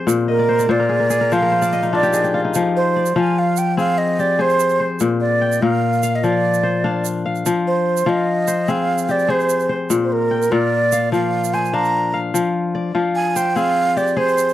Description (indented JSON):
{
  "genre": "west african traditional, West African string and xylophone music",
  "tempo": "98 BPM (dotted quarters)",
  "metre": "12/8",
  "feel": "straight",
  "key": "F dorian",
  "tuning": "A4 = 440 Hz",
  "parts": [
    { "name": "kora", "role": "arpeggios", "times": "0.0-14.5 s", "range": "Bb2 to G5", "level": "-18 LUFS", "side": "left 3 dB", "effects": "none" },
    { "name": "egg shaker", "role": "percussion", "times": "0.1-14.5 s", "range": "none", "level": "-30 LUFS", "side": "right 14 dB", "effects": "none" },
    { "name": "breathy mellow silver concert flute", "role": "melody", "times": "0.3-14.5 s", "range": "Bb4 to Bb5", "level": "-18 LUFS", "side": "right 3 dB", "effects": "none" }
  ],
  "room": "small room ambience",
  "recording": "dry, close 1970s-style studio recording",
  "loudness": "-15 LUFS",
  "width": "side -13 dB against mid",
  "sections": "0.0-14.5 A section",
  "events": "kora fill 0.3-2.5",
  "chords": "0.1 Bb; 2.5 Fm; 5.0 Bb; 7.5 Fm; 9.9 Bb; 12.3 Fm",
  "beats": "| 0.08 0.69 1.31 1.93 | 2.54 3.16 3.77 4.39 | 5.00 5.61 6.23 6.84 | 7.45 8.06 8.68 9.29 | 9.90 10.51 11.12 11.73 | 12.34 12.95 13.56 14.17"
}